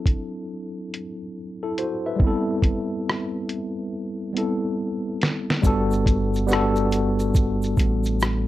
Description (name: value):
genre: lo-fi hip hop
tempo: 70 BPM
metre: 4/4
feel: swing 64% on 16ths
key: G major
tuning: A4 = 441 Hz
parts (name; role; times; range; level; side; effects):
- tine electric piano; accompaniment; 0.0-8.5 s; F#3 to E5; -24 LUFS; left 1 dB; medium stereo tremolo, cassette tape, plate reverb
- lo-fi sampler-style drum kit; drums; 0.1-8.5 s; hi-hat, kick drum, rim click, shaker, snare drum; -21 LUFS; equal; none
- deep dub fingered electric bass; bass; 5.6-8.4 s; G1 to A1; -25 LUFS; equal; none
- egg shaker; percussion; 5.6-8.5 s; none; -44 LUFS; right 6 dB; none
room: light reverb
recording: dark, warm production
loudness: -21 LUFS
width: side -15 dB against mid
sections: 0.0-5.6 A section; 5.6-8.5 B section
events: filter sweep on tine electric piano 0.0-5.6; drum fill 3.9-5.6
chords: 0.0 D9; 2.2 Am7; 5.6 Gmaj9